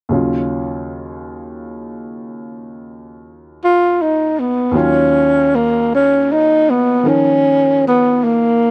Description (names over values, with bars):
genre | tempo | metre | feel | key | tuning
jazz ballad | 52 BPM | 4/4 | swing 68% on 8ths | Eb minor | A4 = 440 Hz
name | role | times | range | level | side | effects
clear concert grand piano | accompaniment | 0.1-8.7 s | Eb2 to Bb4 | -24 LUFS | equal | none
breathy tenor saxophone | melody | 3.6-8.7 s | Bb3 to F4 | -14 LUFS | equal | none
room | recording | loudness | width
light reverb | recorded outdoors, with no room sound | -14 LUFS | mono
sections
0.1-4.7 A section; 4.7-8.7 B section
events
none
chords
0.1 Ebm7; 4.7 Ebm9